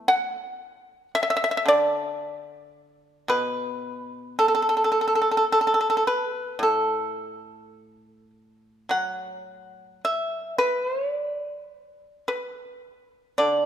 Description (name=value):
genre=chinese traditional, Chinese solo plucked strings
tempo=54 BPM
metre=4/4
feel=uneven beats, rubato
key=D gong mode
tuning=A4 = 440 Hz
part: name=pipa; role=solo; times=0.0-13.7 s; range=A2 to F#5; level=-22 LUFS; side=equal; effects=none
room=moderate scoring stage reverb, RT60 1.9 s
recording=minimal, uncompressed stereo recording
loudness=-22 LUFS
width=side -9 dB against mid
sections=0.0-13.7 A section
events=none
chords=none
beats=| 0.09 1.15 2.22 3.30 | 4.40 5.50 6.61 7.75 | 8.91 10.04 11.17 12.30 | 13.41